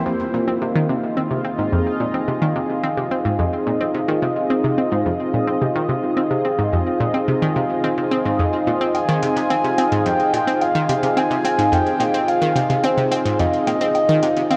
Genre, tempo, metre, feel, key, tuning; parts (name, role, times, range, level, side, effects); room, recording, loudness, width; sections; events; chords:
ambient, sequencer-driven space music; 108 BPM; 4/4; straight; F minor; A4 = 440 Hz
sweeping resonant pad; sustained chords; 0.0-14.6 s; C4 to Eb5; -23 LUFS; equal; chorus
Celtic harp; arpeggios; 0.0-3.1 s; Bb3 to C5; -32 LUFS; equal; tape echo
analog pluck; riff; 0.0-14.6 s; F2 to C4; -24 LUFS; equal; chorus, tape echo
breathy flute-like synth lead; melody; 8.9-14.6 s; C5 to Ab5; -23 LUFS; equal; subtle chorus, tape echo
electronic hi-hat and woodblock; percussion; 8.9-14.6 s; -32 LUFS; equal; tape echo
wet huge ambient reverb, RT60 8.6 s; -20 LUFS; mono
0.1-14.6 A section
0.1 Fm7